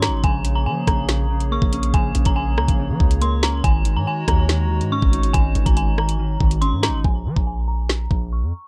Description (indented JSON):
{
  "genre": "hip hop, drill",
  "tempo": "141 BPM",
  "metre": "4/4",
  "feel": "half-time",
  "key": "Bb minor",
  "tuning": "A4 = 440 Hz",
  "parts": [
    { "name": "dark detuned synth bell", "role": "melody", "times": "0.0-8.7 s", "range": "Ab5 to Db6", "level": "-29 LUFS", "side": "equal", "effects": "chorus, low-pass filter" },
    { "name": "mellow electric guitar", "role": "accompaniment", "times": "0.0-7.0 s", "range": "Db3 to Eb4", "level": "-29 LUFS", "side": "equal", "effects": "none" },
    { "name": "hollow soft pad", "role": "sustained chords", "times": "0.0-7.0 s", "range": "Ab3 to Db5", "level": "-34 LUFS", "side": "equal", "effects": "chorus" },
    { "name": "hard-hitting 808-style bass", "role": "bass", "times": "0.0-8.5 s", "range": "Ab1 to F3", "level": "-24 LUFS", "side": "equal", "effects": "none" },
    { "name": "drill drum kit", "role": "drums", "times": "0.0-8.2 s", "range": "hi-hat, kick drum, rim click, snare drum", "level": "-22 LUFS", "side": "equal", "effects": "none" }
  ],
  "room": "little or no reverb",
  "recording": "none",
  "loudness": "-20 LUFS",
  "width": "mono",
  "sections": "0.0-7.0 A section; 7.0-8.7 B section",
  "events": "break 7.0-8.7; filter sweep on synth bell 7.0-8.7",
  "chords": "0.2 Bbm7; 3.6 Ab7sus4; 7.0 Bbm"
}